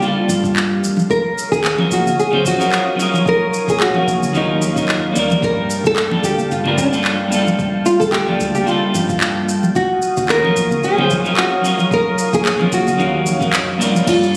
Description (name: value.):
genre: sunset chillout.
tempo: 111 BPM.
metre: 4/4.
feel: swing 56% on 16ths.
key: unclear.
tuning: A4 = 440 Hz.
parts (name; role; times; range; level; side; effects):
nylon-string guitar; melody; 0.0-14.4 s; D4 to Bb4; -20 LUFS; equal; delay.
clean electric guitar; accompaniment; 0.0-14.4 s; Gb3 to F5; -21 LUFS; equal; delay.
lush unison pad; sustained chords; 0.0-14.4 s; Bb3 to Eb6; -29 LUFS; equal; chorus.
smooth R&B drum kit; drums; 0.0-14.3 s; crash cymbal, handclaps, hi-hat, shaker; -25 LUFS; equal; studio reverb.
woody fretless electric bass; bass; 0.3-14.4 s; Bb1 to G2; -26 LUFS; equal; none.
congas; percussion; 0.3-14.0 s; none; -26 LUFS; equal; none.
electronic kick drum; drums; 0.4-14.2 s; none; -28 LUFS; equal; studio reverb.
room: moderate lush hall reverb, RT60 1.8 s, digital ambience.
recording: recorded on a phone in the room, studio reverb, compression.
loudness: -16 LUFS.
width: mono.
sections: 0.0-14.1 A section.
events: none.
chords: 0.0 Gm9; 1.1 Ebm9; 5.4 Gm9; 9.8 Ebm9.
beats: 0.02 0.56 | 1.10 1.64 2.18 2.72 | 3.26 3.80 4.34 4.88 | 5.42 5.97 6.51 7.05 | 7.59 8.13 8.67 9.21 | 9.75 10.29 10.83 11.37 | 11.91 12.45 12.99 13.53 | 14.07.